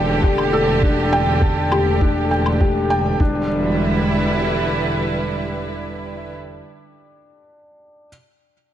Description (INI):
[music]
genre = piano and strings electronica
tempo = 101 BPM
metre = 4/4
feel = straight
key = E minor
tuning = A4 = 444 Hz
[part]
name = warm studio string section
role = sustained chords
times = 0.0-6.3 s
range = D3 to B4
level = -22 LUFS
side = right 2 dB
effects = sidechain pumping
[part]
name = felt-muted upright piano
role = riff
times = 0.0-8.1 s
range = D4 to A5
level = -22 LUFS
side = left 2 dB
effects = tape echo
[part]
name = rich symphonic double bass section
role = bass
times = 0.0-4.9 s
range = E1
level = -22 LUFS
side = equal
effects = sidechain pumping
[part]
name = electronic kick drum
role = drums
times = 0.2-3.3 s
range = none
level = -17 LUFS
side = equal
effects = none
[part]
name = woodblock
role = drums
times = 0.4-2.6 s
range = none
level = -27 LUFS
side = left 2 dB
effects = overdrive
[sound]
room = moderate echo chamber reverb, RT60 2.2 s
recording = none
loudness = -16 LUFS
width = side -11 dB against mid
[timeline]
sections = 0.0-3.2 A section; 3.2-5.6 B section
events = filter sweep on double bass section 0.0-3.2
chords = 0.0 Dsus4/E; 3.2 Em7